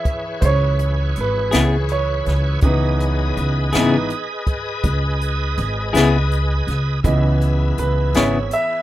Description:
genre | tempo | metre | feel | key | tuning
slow blues | 54 BPM (dotted quarters) | 12/8 | straight | C# minor | A4 = 441 Hz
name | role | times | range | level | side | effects
clear grand piano | accompaniment | 0.0-8.8 s | E3 to E5 | -22 LUFS | right 2 dB | none
bright tonewheel organ | sustained chords | 0.0-8.8 s | E3 to D#5 | -26 LUFS | equal | slow rotary speaker, overdrive, chorus vibrato
jazz brush drum kit | drums | 0.0-8.7 s | hi-hat, kick drum, snare drum | -21 LUFS | equal | none
upright bass | bass | 0.4-8.5 s | G#1 to C#2 | -19 LUFS | equal | none
clean electric guitar | accompaniment | 1.5-8.4 s | C#3 to G#4 | -16 LUFS | left 4 dB | tremolo
room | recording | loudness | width
little or no reverb | rough home demo mix | -16 LUFS | side -14 dB against mid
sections
0.0-8.8 A section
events
grand piano solo 0.0-8.8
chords
0.0 C#m7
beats
0.43 1.53 | 2.63 3.74 4.84 5.94 | 7.04 8.14

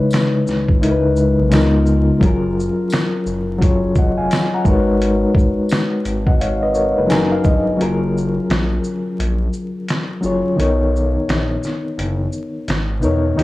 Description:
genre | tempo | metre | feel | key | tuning
lo-fi hip hop | 86 BPM | 4/4 | swing 63% on 16ths | F# major | A4 = 440 Hz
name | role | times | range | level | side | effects
reed electric piano | accompaniment | 0.0-13.4 s | B2 to A#5 | -17 LUFS | left 1 dB | overdrive, fast tremolo, cassette tape
lo-fi sampler-style drum kit | drums | 0.1-13.4 s | finger snaps, hi-hat, kick drum, shaker, snare drum | -18 LUFS | equal | vintage 12-bit sampler grit
tambourine | percussion | 0.1-7.3 s | none | -39 LUFS | right 2 dB | none
smooth synth bass | bass | 0.5-13.4 s | E#1 to E2 | -21 LUFS | equal | none
room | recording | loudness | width
light reverb | dry, gritty hardware recording, transformer saturation, vinyl crackle, studio ambience | -15 LUFS | side -17 dB against mid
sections
0.0-7.8 A section; 7.8-13.4 B section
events
reed electric piano fill 6.7-7.8; break 7.8-13.4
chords
0.0 C#m7; 1.5 C#13; 2.2 F#maj7; 4.7 G#m11; 7.1 F#69; 7.8 F#maj7; 10.6 Bmaj7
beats
0.12 0.81 1.51 | 2.21 2.91 3.60 4.30 | 5.00 5.70 6.39 7.09 | 7.79 8.49 9.19 9.88 | 10.58 11.28 11.98 12.67 | 13.37

